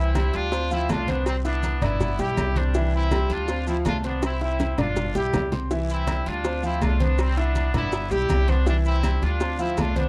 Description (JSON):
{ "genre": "latin, salsa", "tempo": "162 BPM", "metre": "4/4", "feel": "straight", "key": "C major", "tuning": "A4 = 440 Hz", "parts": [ { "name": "bright trumpet section", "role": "melody", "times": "0.0-10.1 s", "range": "G3 to G4", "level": "-31 LUFS", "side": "equal", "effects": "slapback echo" }, { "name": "bright concert grand piano", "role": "accompaniment", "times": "0.0-10.1 s", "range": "E3 to E6", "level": "-30 LUFS", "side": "equal", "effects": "none" }, { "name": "upright bass", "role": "bass", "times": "0.0-10.1 s", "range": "G1 to D2", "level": "-27 LUFS", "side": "equal", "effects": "none" }, { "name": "claves", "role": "percussion", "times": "0.2-10.0 s", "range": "none", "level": "-46 LUFS", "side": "equal", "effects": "none" }, { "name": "congas", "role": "percussion", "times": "0.2-10.1 s", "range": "none", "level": "-33 LUFS", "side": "equal", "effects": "none" }, { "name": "cowbell and bongos", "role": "percussion", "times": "0.2-10.1 s", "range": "none", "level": "-34 LUFS", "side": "equal", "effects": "none" }, { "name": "guiro", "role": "percussion", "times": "0.2-10.1 s", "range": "none", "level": "-49 LUFS", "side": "equal", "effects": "none" }, { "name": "maracas", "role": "percussion", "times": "0.2-10.1 s", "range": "none", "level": "-49 LUFS", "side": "equal", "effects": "none" }, { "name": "timbales and agogo bells", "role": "percussion", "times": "0.2-10.0 s", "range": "none", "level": "-38 LUFS", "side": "equal", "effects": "none" } ], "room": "small room ambience", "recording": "dry, close 1970s-style studio recording", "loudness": "-24 LUFS", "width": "mono", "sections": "0.0-10.1 A section", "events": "drum fill 4.2-5.7", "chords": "0.0 C; 0.5 Dm7; 1.3 G; 2.7 C; 3.5 Dm7; 4.2 C; 5.0 G; 5.7 C; 6.4 Dm7; 7.2 G; 8.7 C; 9.4 Dm7" }